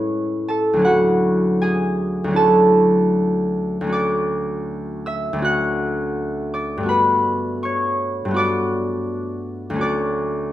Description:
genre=classical, solo harp piece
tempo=81 BPM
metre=4/4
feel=rubato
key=unclear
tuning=A4 = 437 Hz
part: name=concert harp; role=solo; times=0.0-10.5 s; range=D2 to F#6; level=-17 LUFS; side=equal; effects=none
room=light reverb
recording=none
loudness=-17 LUFS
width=side -13 dB against mid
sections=0.0-10.5 A section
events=none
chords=0.0 Amaj7; 0.9 Dmaj9; 3.9 Dmaj7; 6.9 Gmaj9; 9.8 Dmaj7

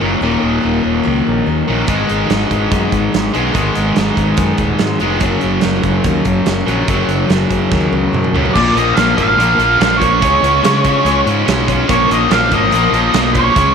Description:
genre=classic rock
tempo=144 BPM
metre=4/4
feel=straight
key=unclear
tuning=A4 = 440 Hz
part: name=picked steel-string acoustic guitar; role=accompaniment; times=0.0-13.7 s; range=Ab2 to Db5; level=-22 LUFS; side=left 10 dB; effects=none
part: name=distorted electric guitar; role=riff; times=0.0-13.7 s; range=Eb2 to Db4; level=-15 LUFS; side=equal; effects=distortion
part: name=fuzz fingered electric bass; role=bass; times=0.0-13.7 s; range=Eb1 to Db3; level=-19 LUFS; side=equal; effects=overdrive
part: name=big rock drum kit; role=drums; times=1.9-13.7 s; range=crash cymbal, hi-hat, kick drum, snare drum, toms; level=-19 LUFS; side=right 4 dB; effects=none
part: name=octave-fuzz lead guitar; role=melody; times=8.5-13.7 s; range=Db5 to F5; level=-14 LUFS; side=right 1 dB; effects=distortion, slapback echo
room=wet spring reverb, RT60 1.2 s, studio ambience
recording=1960s-style stereo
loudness=-11 LUFS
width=side -6 dB against mid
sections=0.0-8.5 A section; 8.5-13.7 B section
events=drum fill 7.7-8.5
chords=0.0 Ebm7; 1.9 Abm; 5.2 Gb; 8.5 Bb; 10.2 Db; 11.9 Bbm

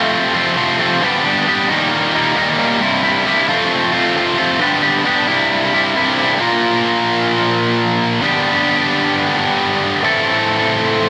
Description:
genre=rock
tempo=133 BPM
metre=4/4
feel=straight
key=unclear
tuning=A4 = 440 Hz
part: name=tight distorted guitar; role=solo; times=0.0-11.1 s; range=C2 to Bb4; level=-15 LUFS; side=equal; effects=distortion, slapback echo
room=wet lush hall reverb, RT60 2.2 s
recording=big arena sound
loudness=-15 LUFS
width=mono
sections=0.0-6.4 A section; 6.4-11.1 B section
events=none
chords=0.0 F; 1.0 G; 1.7 Eb; 2.8 C; 3.5 F; 4.6 G; 5.3 C; 6.4 Bb5; 8.2 G; 10.0 Am

